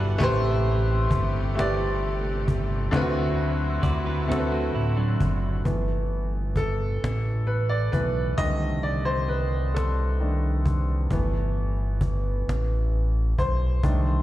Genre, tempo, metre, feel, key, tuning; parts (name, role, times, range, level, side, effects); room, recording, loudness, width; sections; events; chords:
slow six-eight R&B; 44 BPM (dotted quarters); 6/8; straight; G major; A4 = 440 Hz
electric guitar at the edge of break-up; second line; 0.0-5.6 s; F#3 to D5; -34 LUFS; right 7 dB; spring reverb, slapback echo
clear baby grand piano; accompaniment; 0.0-14.2 s; D3 to Eb5; -27 LUFS; equal; slapback echo
warm symphonic string section; sustained chords; 0.0-5.6 s; C3 to F#5; -37 LUFS; right 2 dB
smooth synth bass; bass; 0.0-14.2 s; F#1 to A2; -25 LUFS; equal
cajon; drums; 0.2-14.0 s; -27 LUFS; equal
little or no reverb; live gig heard through the venue's PA, recital hall reverb; -22 LUFS; side -14 dB against mid
0.0-5.7 A section; 5.7-14.2 B section
grand piano solo 5.7-14.2
0.2 Am9; 2.9 D13; 5.7 G69; 8.4 Cm6; 11.1 G69